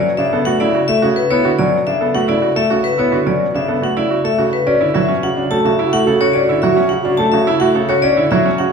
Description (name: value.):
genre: classical, minimalist pattern music.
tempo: 107 BPM.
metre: 3/4.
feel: straight.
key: B minor, D major from 4.7 s.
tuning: A4 = 440 Hz.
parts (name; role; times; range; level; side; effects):
vibraphone with hard mallets; melody; 0.0-8.7 s; B4 to A5; -17 LUFS; left 7 dB; none.
warm concert grand piano; accompaniment; 0.0-8.7 s; C#3 to C#4; -18 LUFS; right 1 dB; none.
bright baby grand piano; arpeggios; 0.0-8.7 s; C#4 to A4; -18 LUFS; right 6 dB; none.
mellow wooden-headed alto flute; second line; 4.7-7.8 s; F#4; -20 LUFS; right 4 dB; none.
room: wet recital hall reverb, RT60 1.7 s.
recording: heard from further back in the room.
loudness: -13 LUFS.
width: side -6 dB against mid.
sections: 0.0-4.7 A section; 4.7-8.7 B section.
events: none.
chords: 0.0 Bm11; 4.7 Dmaj7.